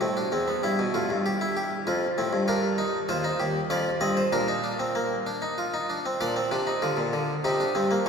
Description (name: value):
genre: classical, baroque-style 3-part fugue for harpsichord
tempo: 97 BPM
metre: 3/4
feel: straight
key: Bb major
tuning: A4 = 440 Hz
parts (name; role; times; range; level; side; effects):
- harpsichord; solo; 0.0-8.1 s; Eb2 to Eb5; -24 LUFS; equal; none
room: wet church reverb, RT60 3.3 s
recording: minimal, uncompressed stereo recording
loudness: -24 LUFS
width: side -6 dB against mid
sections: 0.0-6.2 A section; 6.2-8.1 B section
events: none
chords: 0.0 Cmaj13; 0.6 Em/G; 1.9 Fadd9; 2.5 Gm; 3.1 Cm/Eb; 3.7 F5; 4.3 Bb; 7.5 Cm7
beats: 0.02 | 0.63 1.25 1.86 | 2.47 3.08 3.70 | 4.32 4.95 5.58 | 6.21 6.84 7.46 | 8.07